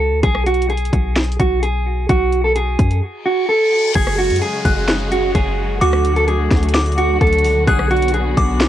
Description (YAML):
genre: hip hop, trap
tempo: 129 BPM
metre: 4/4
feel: half-time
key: unclear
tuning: A4 = 440 Hz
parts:
  - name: mellow electric guitar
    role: melody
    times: 0.0-8.7 s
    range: F#4 to A4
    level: -18 LUFS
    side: right 2 dB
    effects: cassette tape, tape echo
  - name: warm 808-style bass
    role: bass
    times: 0.0-8.7 s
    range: F#1 to F#2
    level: -19 LUFS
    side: equal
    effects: none
  - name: trap drum kit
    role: drums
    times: 0.2-8.7 s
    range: hi-hat, kick drum, rim click, snare drum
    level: -18 LUFS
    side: equal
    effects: overdrive
  - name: reverse cymbal and downlifter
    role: sound effects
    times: 3.2-7.7 s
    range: none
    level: -29 LUFS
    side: left 3 dB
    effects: none
  - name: delicate synth tine bell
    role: second line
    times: 4.0-8.7 s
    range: D6 to G#6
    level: -24 LUFS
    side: left 2 dB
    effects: chorus, tape echo
  - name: dark symphonic string section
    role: sustained chords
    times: 4.0-8.7 s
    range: C#3 to F#4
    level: -23 LUFS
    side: left 1 dB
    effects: none
room: light reverb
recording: home recording on cassette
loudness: -14 LUFS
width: side -11 dB against mid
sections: 0.0-4.0 A section; 4.0-8.7 B section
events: reverse cymbal 3.2-4.0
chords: 0.2 B5; 4.0 F#sus2; 5.8 D; 7.7 Bm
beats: | 0.23 0.70 1.16 1.63 | 2.09 2.56 3.02 3.49 | 3.95 4.42 4.88 5.35 | 5.81 6.28 6.75 7.21 | 7.67 8.14 8.61